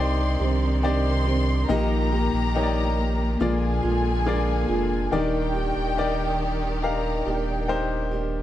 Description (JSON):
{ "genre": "pop ballad", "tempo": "70 BPM", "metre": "4/4", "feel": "straight", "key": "Eb major", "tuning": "A4 = 441 Hz", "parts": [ { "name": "dark studio violin section", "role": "second line", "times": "0.0-8.1 s", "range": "G5 to C6", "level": "-31 LUFS", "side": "left 1 dB", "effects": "none" }, { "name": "clear baby grand piano", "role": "accompaniment", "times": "0.0-8.4 s", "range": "Bb2 to F5", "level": "-27 LUFS", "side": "left 4 dB", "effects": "none" }, { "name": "clear studio string section", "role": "sustained chords", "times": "0.0-8.4 s", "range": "C3 to D5", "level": "-31 LUFS", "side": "equal", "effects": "none" }, { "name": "fingerpicked steel-string acoustic guitar", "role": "arpeggios", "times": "0.0-8.4 s", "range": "Bb2 to G4", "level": "-30 LUFS", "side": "right 5 dB", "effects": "none" }, { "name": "warm sub bass", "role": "bass", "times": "0.0-8.4 s", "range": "Eb1 to C2", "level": "-26 LUFS", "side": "equal", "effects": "none" } ], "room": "studio reverb", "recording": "dark, warm production", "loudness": "-21 LUFS", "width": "side -12 dB against mid", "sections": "0.0-8.4 A section", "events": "none", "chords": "0.0 Cmadd9; 1.7 Eb/Bb; 3.4 Bb7; 5.1 Ebmaj7" }